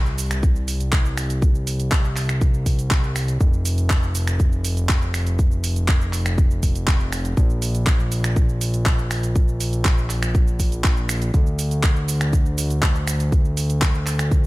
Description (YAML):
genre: progressive house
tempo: 121 BPM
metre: 4/4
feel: straight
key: D minor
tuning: A4 = 440 Hz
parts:
  - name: fat analog bass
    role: bass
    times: 0.0-14.5 s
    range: F1 to D2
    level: -22 LUFS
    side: equal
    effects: tube saturation, sidechain pumping
  - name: house drum kit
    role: drums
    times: 0.1-14.5 s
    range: finger snaps, handclaps, hi-hat, shaker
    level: -26 LUFS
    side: right 1 dB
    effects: none
  - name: electronic kick drum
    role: drums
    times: 0.4-14.4 s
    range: none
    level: -18 LUFS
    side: equal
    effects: none
room: little or no reverb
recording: none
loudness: -18 LUFS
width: side -20 dB against mid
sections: 0.0-14.5 A section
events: none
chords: none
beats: 0.43 0.93 | 1.42 1.92 2.41 2.91 | 3.41 3.90 4.40 4.89 | 5.39 5.88 6.38 6.88 | 7.37 7.87 8.37 8.86 | 9.36 9.85 10.35 10.84 | 11.34 11.84 12.33 12.83 | 13.32 13.82 14.31